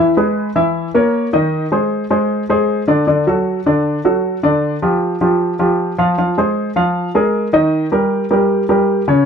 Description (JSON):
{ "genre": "jazz", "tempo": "155 BPM", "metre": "4/4", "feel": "straight", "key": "Eb major", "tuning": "A4 = 443 Hz", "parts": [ { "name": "dark baby grand piano", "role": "solo", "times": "0.0-9.2 s", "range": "Db3 to F5", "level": "-13 LUFS", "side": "equal", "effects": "none" } ], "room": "light reverb", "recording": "close, detailed microphones", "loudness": "-13 LUFS", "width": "side -7 dB against mid", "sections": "0.0-9.3 A section", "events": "none", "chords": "0.0 E; 0.7 Dbm69; 1.5 Ab; 3.1 D; 4.6 G5; 6.2 Fm; 7.0 Bb5; 7.7 Eb" }